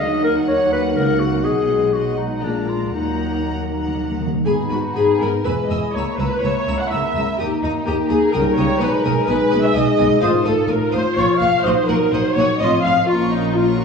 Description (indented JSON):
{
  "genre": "quick classical-period movement for symphony orchestra",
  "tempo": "125 BPM",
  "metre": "3/4",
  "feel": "rubato",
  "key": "Eb minor, G# minor from 4.5 s, Bb minor from 10.2 s",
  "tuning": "A4 = 439 Hz",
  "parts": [
    { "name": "rich studio violin section", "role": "melody", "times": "0.0-13.8 s", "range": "D#4 to Bb5", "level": "-28 LUFS", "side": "left 3 dB", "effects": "none" },
    { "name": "clear clarinet", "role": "second line", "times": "0.0-13.3 s", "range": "D4 to Eb5", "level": "-24 LUFS", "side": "left 2 dB", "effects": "none" },
    { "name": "clear studio violin section", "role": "second line", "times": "0.0-13.8 s", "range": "D5 to E6", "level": "-32 LUFS", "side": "left 2 dB", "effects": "none" },
    { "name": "warm studio viola section", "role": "accompaniment", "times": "0.0-13.8 s", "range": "Ab3 to F#5", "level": "-21 LUFS", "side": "equal", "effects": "none" },
    { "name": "dark French horn section", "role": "sustained chords", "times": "0.0-13.8 s", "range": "Eb3 to F4", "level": "-22 LUFS", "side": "left 2 dB", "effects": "none" },
    { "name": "rich studio cello section", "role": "bass", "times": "0.0-13.8 s", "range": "C#2 to Eb3", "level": "-25 LUFS", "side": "right 1 dB", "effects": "none" },
    { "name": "rich studio double bass section", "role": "bass", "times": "0.0-13.8 s", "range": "E1 to Eb2", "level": "-27 LUFS", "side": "right 3 dB", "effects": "none" },
    { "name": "timpani", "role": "percussion", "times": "2.9-4.4 s", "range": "Eb3", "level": "-26 LUFS", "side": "equal", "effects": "none" },
    { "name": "large flute ensemble", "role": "second line", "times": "4.5-13.3 s", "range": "G5 to Eb6", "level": "-29 LUFS", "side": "right 1 dB", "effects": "none" }
  ],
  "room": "wet recital hall reverb, RT60 1.3 s",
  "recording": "worn, warbling old tape, cassette tape, warbly pitch drift, small room ambience",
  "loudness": "-16 LUFS",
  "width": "side -5 dB against mid",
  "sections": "0.0-4.5 A section; 4.5-13.8 B section",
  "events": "timpani fill 2.9-4.5",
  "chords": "0.0 Ebm; 1.4 B; 2.4 Bb7; 2.9 Ebm; 4.5 G#m; 5.5 E; 5.9 A#dim/C#; 7.4 D#5; 8.3 D#7/C#; 8.8 G#m/B; 10.2 F7/A; 11.2 Bbm; 11.6 Ebm6/Bb; 12.6 F7; 13.1 Bbm"
}